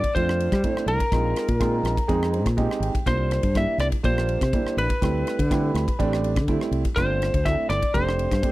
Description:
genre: electric jazz fusion.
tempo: 123 BPM.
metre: 4/4.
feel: straight.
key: G dorian.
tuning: A4 = 439 Hz.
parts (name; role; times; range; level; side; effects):
lightly driven lead guitar; melody; 0.0-8.5 s; Bb4 to E5; -26 LUFS; left 1 dB; slapback echo.
crisp fusion drum kit; drums; 0.0-8.5 s; kick drum, ride cymbal, rim click; -27 LUFS; equal; none.
warm concert grand piano; accompaniment; 0.2-8.5 s; G3 to G5; -27 LUFS; right 4 dB; none.
fretless electric bass; bass; 0.2-8.4 s; F1 to G3; -24 LUFS; equal; none.
room: little or no reverb.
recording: dry, close 1970s-style studio recording.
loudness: -20 LUFS.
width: side -18 dB against mid.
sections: 0.0-8.5 A section.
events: grand piano fill 2.1-3.1, 6.0-7.0.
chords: 0.0 G9sus4 (rootless); 1.1 Bb9sus4; 3.1 C9sus4; 5.0 D9sus4; 7.0 G9sus4.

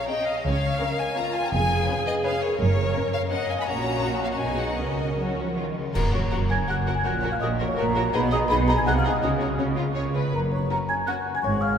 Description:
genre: cinematic, playful, whimsical film cue.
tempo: 165 BPM.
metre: 3/4.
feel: straight.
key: F# major.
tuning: A4 = 440 Hz.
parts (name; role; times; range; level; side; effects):
rich chamber violin section; melody; 0.0-11.1 s; G#4 to B5; -31 LUFS; left 2 dB; none.
xylophone with soft rubber mallets; melody; 0.0-11.8 s; A#4 to B5; -30 LUFS; left 3 dB; none.
rich symphonic viola section; accompaniment; 0.0-11.2 s; C#4 to Eb5; -32 LUFS; right 1 dB; none.
warm symphonic violin section; second line; 0.1-11.1 s; Db4 to C#5; -33 LUFS; left 1 dB; none.
rich chamber double bass section; bass; 0.5-11.7 s; E#1 to Db2; -28 LUFS; right 2 dB; none.
warm chamber cello section; bass; 0.5-11.7 s; E#2 to F#3; -29 LUFS; right 1 dB; none.
cymbal swell, clash cymbals and concert bass drum; percussion; 3.7-6.6 s; none; -32 LUFS; equal; none.
mellow hollow small flute group; second line; 5.9-11.8 s; A#5 to G#6; -28 LUFS; right 1 dB; none.
room: wet church reverb, RT60 3.8 s.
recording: none.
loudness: -22 LUFS.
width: side -8 dB against mid.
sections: 0.0-5.9 A section; 5.9-11.8 B section.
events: band accent 5.9-6.3.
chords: 0.5 Bbm/Db; 1.5 C#7/E#; 2.6 F#; 3.7 F#/A#; 4.4 G#m7/B; 4.8 F#/C#; 5.6 N.C.; 5.9 F#; 7.1 F#/A#; 8.1 G#m/B; 8.9 G#/B# (rootless); 9.2 F#/C# (rootless); 10.3 F#.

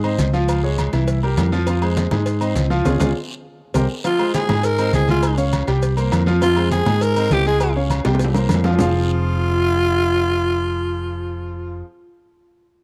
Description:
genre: latin, salsa.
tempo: 202 BPM.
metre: 4/4.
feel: straight.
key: F minor from 4.0 s.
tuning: A4 = 440 Hz.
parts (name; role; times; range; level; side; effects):
bright concert grand piano; accompaniment; 0.0-11.8 s; E3 to Ab5; -26 LUFS; equal; none.
mellow fretless electric bass; bass; 0.0-11.8 s; F1 to Ab2; -22 LUFS; equal; none.
agogo bells and timbales; percussion; 0.0-8.9 s; none; -30 LUFS; equal; none.
congas; percussion; 0.0-8.9 s; none; -28 LUFS; equal; none.
cowbell and bongos; percussion; 0.2-8.9 s; none; -30 LUFS; equal; none.
guiro; percussion; 0.2-8.9 s; none; -40 LUFS; equal; none.
maracas; percussion; 0.2-8.9 s; none; -42 LUFS; equal; none.
growling tenor saxophone; melody; 4.1-11.8 s; F4 to Bb4; -22 LUFS; equal; none.
room: small room ambience.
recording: dry, close 1970s-style studio recording.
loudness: -19 LUFS.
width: mono.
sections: 0.0-4.0 A section; 4.0-8.8 B section; 8.8-11.2 C section.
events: band accent 2.9-4.0; drum fill 3.6-4.0, 8.1-8.8.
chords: 0.5 Db; 1.1 C7; 1.7 Fm; 2.3 Ab; 2.9 Db; 3.5 C5; 4.0 Fm; 4.6 Abadd9; 5.2 Db; 5.8 C5; 6.4 Fm; 7.0 Abadd9; 7.6 Db; 8.2 C5; 8.8 Fm.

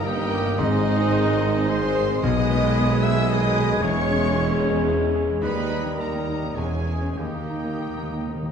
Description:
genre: classical.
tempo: 93-116 BPM.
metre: 3/4.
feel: rubato.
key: G# minor.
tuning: A4 = 439 Hz.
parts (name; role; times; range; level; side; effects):
clear concert grand piano; melody; 0.0-8.5 s; B1 to C5; -26 LUFS; left 2 dB; none.
rich studio violin section; melody; 0.0-8.5 s; Eb5 to E6; -34 LUFS; left 2 dB; none.
large flute ensemble; second line; 0.0-8.5 s; A#5 to G#6; -34 LUFS; left 1 dB; none.
rich studio violin section; second line; 0.0-8.5 s; Eb4 to E5; -36 LUFS; left 2 dB; none.
warm clarinet; second line; 0.0-8.5 s; Eb4 to E5; -32 LUFS; equal; none.
warm oboe; second line; 0.0-8.5 s; Eb4 to E5; -36 LUFS; right 1 dB; none.
clear bassoon; accompaniment; 0.0-8.5 s; G3 to Bb3; -34 LUFS; right 2 dB; none.
warm studio viola section; accompaniment; 0.0-8.5 s; G3 to Eb4; -30 LUFS; right 1 dB; none.
bright trombone section; sustained chords; 0.0-8.5 s; D#3 to A#3; -34 LUFS; right 3 dB; none.
dark French horn section; sustained chords; 0.0-8.5 s; G#3 to Bb4; -32 LUFS; left 6 dB; none.
clear trumpet; stabs; 0.0-8.5 s; B4 to Eb5; -34 LUFS; equal; none.
rich studio cello section; bass; 0.0-8.5 s; D#2 to B2; -31 LUFS; right 2 dB; none.
warm studio double bass section; bass; 0.0-8.5 s; E1 to D#2; -30 LUFS; right 5 dB; none.
warm tuba; bass; 0.0-8.5 s; E1 to D#2; -31 LUFS; right 4 dB; none.
timpani; percussion; 0.6-1.4, 7.2-8.5 s; Ab2 to D#3; -31 LUFS; left 1 dB; none.
room: wet scoring stage reverb, RT60 1.5 s.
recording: dark, warm production.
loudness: -20 LUFS.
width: side -7 dB against mid.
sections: 0.0-8.5 A section.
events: timpani fill 7.2-8.5.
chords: 0.0 Eb/G; 0.6 Ab; 2.2 G#m/B; 3.8 C#m/E; 5.4 D#; 6.6 C#m/E; 7.2 D#.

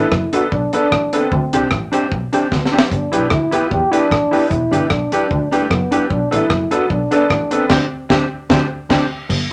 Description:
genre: ska.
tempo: 150 BPM.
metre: 4/4.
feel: swing 54% on 8ths.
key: unclear.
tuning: A4 = 438 Hz.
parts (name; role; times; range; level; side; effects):
dark trombone; melody; 0.0-8.1 s; A3 to G4; -22 LUFS; equal; none.
mellow electric guitar; accompaniment; 0.0-9.1 s; D4 to C5; -23 LUFS; equal; warbly pitch drift.
honky-tonk upright piano; stabs; 0.0-9.1 s; B3 to A4; -24 LUFS; equal; none.
dark double bass; bass; 0.1-9.4 s; E1 to E2; -25 LUFS; equal; none.
deep reggae drum kit; drums; 0.1-9.4 s; crash cymbal, hi-hat, kick drum, rim click, snare drum; -21 LUFS; equal; none.
room: wet club reverb, RT60 0.6 s.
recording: none.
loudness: -17 LUFS.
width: mono.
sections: 0.0-9.3 A section.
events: drum fill 2.5-2.9; band accent 7.7-9.3.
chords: 0.0 Bm7; 1.3 D7sus4; 2.9 G6; 4.5 Em7; 6.1 Bm7; 7.7 D7sus4.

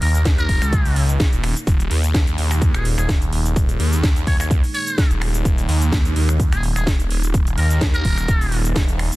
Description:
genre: bass house.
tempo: 127 BPM.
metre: 4/4.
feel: swing 54% on 16ths.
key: unclear.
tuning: A4 = 440 Hz.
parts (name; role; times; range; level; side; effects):
trumpet with metal mute; melody; 0.0-8.6 s; Ab4 to Db5; -27 LUFS; equal; tape echo.
dark analog pad; sustained chords; 0.0-9.2 s; Bb3 to Bb4; -33 LUFS; right 3 dB; lush chorus, sidechain pumping.
phased detuned saw bass; bass; 0.0-9.1 s; Eb1 to Eb2; -19 LUFS; equal; phaser, tube saturation, sidechain pumping.
house drum kit; drums; 0.0-9.2 s; cabasa, finger snaps, hi-hat, snare drum; -26 LUFS; equal; none.
electronic kick drum; drums; 0.3-8.9 s; none; -18 LUFS; equal; none.
room: little or no reverb.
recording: dense, heavily limited modern master.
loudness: -16 LUFS.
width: side -19 dB against mid.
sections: 0.0-9.2 A section.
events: none.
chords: 0.0 Eb5.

